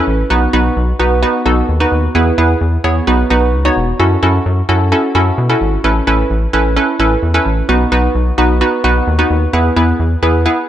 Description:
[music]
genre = synth-pop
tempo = 130 BPM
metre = 4/4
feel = straight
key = unclear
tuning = A4 = 439 Hz
[part]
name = analog pluck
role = accompaniment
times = 0.0-10.6 s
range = B3 to C#5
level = -13 LUFS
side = right 1 dB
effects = chorus
[part]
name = rubbery square bass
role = bass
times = 0.1-10.5 s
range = E1 to B2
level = -14 LUFS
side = equal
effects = none
[sound]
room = wet spring reverb, RT60 1.7 s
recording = none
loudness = -11 LUFS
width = side -11 dB against mid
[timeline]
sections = 0.0-4.0 A section; 4.0-10.7 A section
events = none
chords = 0.3 B; 2.1 E; 3.1 B; 4.0 F#m7; 5.8 Aadd9; 7.7 B; 9.5 E

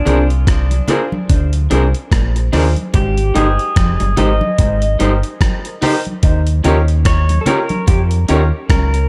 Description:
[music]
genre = lovers rock reggae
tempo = 73 BPM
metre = 4/4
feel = swing 58% on 16ths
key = Ab lydian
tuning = A4 = 436 Hz
[part]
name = electric guitar through a small old amp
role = melody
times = 0.0-9.1 s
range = D4 to Eb5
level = -24 LUFS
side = equal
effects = tape echo
[part]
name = warm baby grand piano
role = accompaniment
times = 0.1-9.0 s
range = D4 to Db5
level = -25 LUFS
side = equal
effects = dub echo
[part]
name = clean electric guitar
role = riff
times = 0.1-8.9 s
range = F3 to F4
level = -28 LUFS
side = equal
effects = spring reverb, dub echo
[part]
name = electric guitar through a small old amp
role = stabs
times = 0.1-8.4 s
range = Db4 to C5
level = -22 LUFS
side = equal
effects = none
[part]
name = deep dub fingered electric bass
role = bass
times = 0.1-9.1 s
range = F1 to F2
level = -17 LUFS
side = equal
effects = none
[part]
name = dusty soul sampler-style drum kit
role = drums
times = 0.1-9.1 s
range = hi-hat, kick drum, rim click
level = -18 LUFS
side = equal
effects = gated reverb, dub echo
[part]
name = congas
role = percussion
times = 0.1-8.9 s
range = none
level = -27 LUFS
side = equal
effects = dub echo
[sound]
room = little or no reverb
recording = none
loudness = -15 LUFS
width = mono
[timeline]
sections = 0.0-9.1 A section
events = clean electric guitar solo 0.0-9.1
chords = 0.0 Bb7; 2.9 Abmaj7; 6.2 Eb7

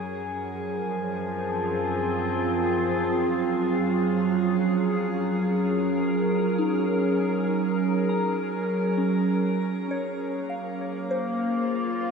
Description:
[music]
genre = ambient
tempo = 50 BPM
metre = 3/4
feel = straight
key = Gb lydian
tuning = A4 = 440 Hz
[part]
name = glassy FM pad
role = sustained chords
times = 0.0-12.1 s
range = Gb2 to Bb4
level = -24 LUFS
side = right 1 dB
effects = ensemble chorus, built-in reverb, shimmer reverb
[part]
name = glass harmonica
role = texture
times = 0.0-3.0 s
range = Ab4 to Ab5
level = -36 LUFS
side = left 3 dB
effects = shimmer reverb
[part]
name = soft synth bell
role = arpeggios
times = 6.6-12.1 s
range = Db4 to Bb5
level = -32 LUFS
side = left 2 dB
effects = chorus, phaser, tape echo, shimmer reverb
[sound]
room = wet cathedral reverb, RT60 7.0 s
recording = in a vast, echoing space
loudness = -23 LUFS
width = side -5 dB against mid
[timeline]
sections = 0.0-3.0 A section; 3.0-12.1 B section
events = fade-out on synth bell 3.0-12.1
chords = 0.0 Fm/Gb; 3.0 Gbadd9; 10.2 Bbm7

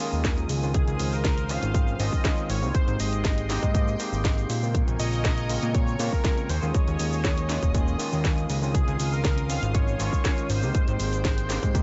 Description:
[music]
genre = nu-disco, nu disco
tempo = 120 BPM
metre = 4/4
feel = straight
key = unclear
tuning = A4 = 440 Hz
[part]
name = unison lead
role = melody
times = 0.0-11.8 s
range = Ab4 to F5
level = -36 LUFS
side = equal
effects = subtle chorus, tape echo
[part]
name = overdriven tine electric piano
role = accompaniment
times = 0.0-11.8 s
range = Db3 to G4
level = -34 LUFS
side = equal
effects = lush chorus, sidechain pumping
[part]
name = lush unison pad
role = sustained chords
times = 0.0-11.8 s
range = Ab3 to Eb6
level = -39 LUFS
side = equal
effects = chorus, sidechain pumping
[part]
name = house drum kit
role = drums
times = 0.0-11.8 s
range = hi-hat, shaker, snare drum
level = -36 LUFS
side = equal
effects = none
[part]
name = fat analog bass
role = bass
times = 0.1-11.8 s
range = Eb1 to Bb2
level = -30 LUFS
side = equal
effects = none
[part]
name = electronic kick drum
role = drums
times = 0.2-11.8 s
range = none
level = -27 LUFS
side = equal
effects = none
[sound]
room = little or no reverb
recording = nothing above 7.9 kHz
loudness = -25 LUFS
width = mono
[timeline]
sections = 0.0-11.8 A section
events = none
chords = 0.0 Eb7sus4; 0.7 Abmaj7; 4.7 Bbm7; 6.5 Eb7sus4; 8.7 Abmaj7

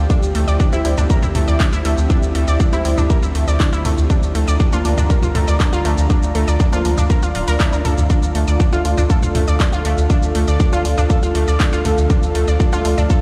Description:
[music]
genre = melodic techno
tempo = 120 BPM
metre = 4/4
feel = straight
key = unclear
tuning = A4 = 441 Hz
[part]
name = filtered dub chord stab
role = stabs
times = 0.0-13.2 s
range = F3 to F4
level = -30 LUFS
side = equal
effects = chorus, sidechain pumping, dub echo
[part]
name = round analog bass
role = bass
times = 0.0-13.1 s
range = D1 to D2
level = -20 LUFS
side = equal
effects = sidechain pumping
[part]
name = bowed-like drone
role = drone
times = 0.0-13.2 s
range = D3 to F3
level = -33 LUFS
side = equal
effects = none
[part]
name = airy breathy pad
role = texture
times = 0.0-13.2 s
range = C4 to Bb5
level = -26 LUFS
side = equal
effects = chorus, sidechain pumping
[part]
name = unison pluck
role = arpeggios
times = 0.1-13.2 s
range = A3 to D6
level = -26 LUFS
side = equal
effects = sidechain pumping, dub echo
[part]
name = deep house drum kit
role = drums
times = 0.1-13.2 s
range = handclaps, hi-hat, shaker, toms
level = -28 LUFS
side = equal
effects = none
[part]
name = electronic kick drum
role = drums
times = 0.1-13.2 s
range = none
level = -18 LUFS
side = equal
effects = none
[part]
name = swell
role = sound effects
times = 7.3-8.1 s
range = none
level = -31 LUFS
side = equal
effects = none
[sound]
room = light reverb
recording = played on a big sound system in a bare room, large studio reverb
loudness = -16 LUFS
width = mono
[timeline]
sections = 0.0-13.2 A section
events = swell 7.3-8.1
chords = 0.1 C/D; 8.1 Dm

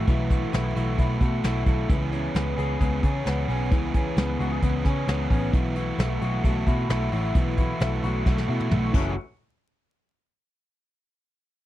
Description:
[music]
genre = jangly indie pop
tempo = 132 BPM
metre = 4/4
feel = straight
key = unclear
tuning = A4 = 441 Hz
[part]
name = crunchy overdriven guitar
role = accompaniment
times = 0.0-9.1 s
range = F#2 to G#4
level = -31 LUFS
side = right 5 dB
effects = none
[part]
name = electric guitar through a small old amp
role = arpeggios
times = 0.0-9.1 s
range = E3 to G#4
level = -29 LUFS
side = left 3 dB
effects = analog chorus, slapback echo
[part]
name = vintage muted picked electric bass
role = bass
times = 0.0-9.2 s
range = F#1 to C#3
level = -27 LUFS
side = equal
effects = none
[part]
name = soft brush drum kit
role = drums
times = 0.1-9.0 s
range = crash cymbal, hi-hat, kick drum, snare drum, toms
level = -24 LUFS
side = equal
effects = none
[sound]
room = little or no reverb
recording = dry, close 1970s-style studio recording, vinyl crackle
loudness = -22 LUFS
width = side -14 dB against mid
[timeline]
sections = 0.0-1.9 A section; 1.9-9.2 B section; 9.2-11.0 C section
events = drum fill 8.3-9.2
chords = 0.0 B7sus4; 1.9 C#m7; 5.5 B7sus4; 8.9 F#m7; 9.2 N.C.

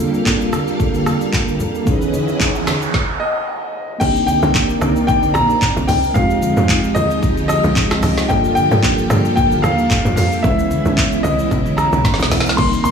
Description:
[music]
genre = amapiano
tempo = 112 BPM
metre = 4/4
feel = swing 55% on 16ths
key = unclear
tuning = A4 = 442 Hz
[part]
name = mellow tine electric piano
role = accompaniment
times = 0.0-12.9 s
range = Fb3 to Cb5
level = -21 LUFS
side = right 1 dB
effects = medium stereo tremolo
[part]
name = string machine, violins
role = sustained chords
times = 0.0-12.9 s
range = C3 to F5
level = -22 LUFS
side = right 1 dB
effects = ensemble chorus
[part]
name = deep house drum kit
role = drums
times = 0.1-12.9 s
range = crash cymbal, handclaps, hi-hat, kick drum, rim click, shaker, snare drum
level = -19 LUFS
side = equal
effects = none
[part]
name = congas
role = percussion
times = 0.3-12.9 s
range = none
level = -25 LUFS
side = left 1 dB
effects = none
[part]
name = noise sweep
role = sound effects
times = 2.2-4.0 s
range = none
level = -25 LUFS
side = right 3 dB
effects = none
[part]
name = clear grand piano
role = melody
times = 3.2-12.9 s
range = Eb5 to C6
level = -19 LUFS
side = left 2 dB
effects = tape echo
[part]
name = tight log drum bass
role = bass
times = 4.0-12.9 s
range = Bb1 to G2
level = -20 LUFS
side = right 1 dB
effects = none
[sound]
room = little or no reverb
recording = studio reverb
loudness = -14 LUFS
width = side -6 dB against mid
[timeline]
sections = 0.0-4.0 A section; 4.0-12.9 B section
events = noise sweep 2.2-4.0; stop 2.9-4.0; drop 4.0-12.9; drum fill 12.0-12.6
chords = 0.0 Gm9; 1.9 Dbm9; 4.0 Cm9; 6.2 Fm9; 8.3 Gm9; 10.4 Dbm9

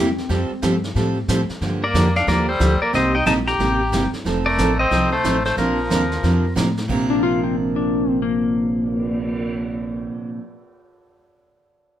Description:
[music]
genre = country, western swing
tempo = 182 BPM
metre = 4/4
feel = swing 63% on 8ths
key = Bb major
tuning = A4 = 440 Hz
[part]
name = clean lap steel guitar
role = second line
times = 0.0-0.8, 7.1-10.3 s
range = Bb3 to F4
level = -23 LUFS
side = left 5 dB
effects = none
[part]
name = picked steel-string acoustic guitar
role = accompaniment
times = 0.0-10.4 s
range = Bb2 to Bb4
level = -21 LUFS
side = right 2 dB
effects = none
[part]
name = upright bass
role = bass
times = 0.0-10.1 s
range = F1 to A2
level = -24 LUFS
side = equal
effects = none
[part]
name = vintage brush drum kit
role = drums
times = 0.2-9.5 s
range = brushed snare drum, crash cymbal, cymbal swell, hi-hat, kick drum, snare drum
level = -30 LUFS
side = equal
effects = none
[part]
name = pedal steel guitar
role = melody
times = 1.8-6.5 s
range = F4 to Bb5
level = -21 LUFS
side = left 2 dB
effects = none
[part]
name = warm cor anglais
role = second line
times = 1.8-6.5 s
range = F3 to G4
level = -24 LUFS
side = equal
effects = none
[sound]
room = moderate club reverb, RT60 0.7 s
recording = none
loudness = -17 LUFS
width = side -11 dB against mid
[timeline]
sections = 0.0-6.9 A section; 6.9-9.5 B section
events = none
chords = 0.3 Fadd9; 1.6 Gm7; 2.9 Cm7; 4.3 F7; 5.6 Bbadd9

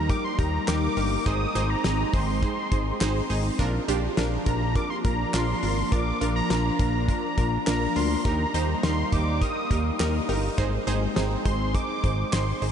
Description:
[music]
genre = synth-pop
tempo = 103 BPM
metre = 4/4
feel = straight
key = Bb mixolydian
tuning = A4 = 440 Hz
[part]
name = wide unison lead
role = melody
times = 0.0-12.7 s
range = Bb5 to Eb6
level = -31 LUFS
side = equal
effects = ping-pong delay
[part]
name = analog pluck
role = accompaniment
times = 0.0-12.7 s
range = D4 to Eb5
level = -30 LUFS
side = right 2 dB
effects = chorus
[part]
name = phased analog pad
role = sustained chords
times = 0.0-12.7 s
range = F3 to Eb4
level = -30 LUFS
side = left 1 dB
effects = phaser, chorus
[part]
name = fat analog bass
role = bass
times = 0.0-12.7 s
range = G1 to Eb2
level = -27 LUFS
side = equal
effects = none
[part]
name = damped 70s drum kit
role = drums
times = 0.1-12.7 s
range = handclaps, hi-hat, kick drum, snare drum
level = -29 LUFS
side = equal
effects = none
[sound]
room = moderate huge ambient reverb, RT60 7.9 s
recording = dreamy mix soaked in reverb, nothing above 10.9 kHz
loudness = -22 LUFS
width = side -8 dB against mid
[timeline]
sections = 0.0-12.7 A section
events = none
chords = 0.0 Eb; 1.3 Ab; 3.6 Bb; 8.3 Eb; 10.6 Ab

